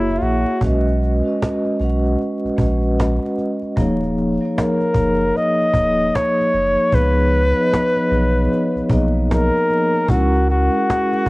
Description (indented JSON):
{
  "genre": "lo-fi hip hop",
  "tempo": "76 BPM",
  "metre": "4/4",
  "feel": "swing 63% on 16ths",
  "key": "Eb minor",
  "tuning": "A4 = 441 Hz",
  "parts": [
    { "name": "breathy flugelhorn", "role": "melody", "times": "0.0-11.3 s", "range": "Fb4 to Eb5", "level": "-18 LUFS", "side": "left 1 dB", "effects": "cassette tape" },
    { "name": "vibraphone with soft mallets", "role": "accompaniment", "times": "0.0-11.3 s", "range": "F3 to F#5", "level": "-20 LUFS", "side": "equal", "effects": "cassette tape" },
    { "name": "warm sub bass", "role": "bass", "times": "0.0-11.3 s", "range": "Eb1 to Db2", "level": "-20 LUFS", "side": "equal", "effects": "none" },
    { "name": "cajon", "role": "drums", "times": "0.1-11.3 s", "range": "none", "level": "-23 LUFS", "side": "equal", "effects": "vintage 12-bit sampler grit" }
  ],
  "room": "light reverb, small room ambience",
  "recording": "home recording on cassette, vinyl crackle",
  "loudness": "-15 LUFS",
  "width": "side -21 dB against mid",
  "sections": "0.0-11.3 A section",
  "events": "none",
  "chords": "0.0 Gb7; 0.6 Bmaj7; 3.8 Ebm7; 6.9 Db7; 10.1 Gb7/Db"
}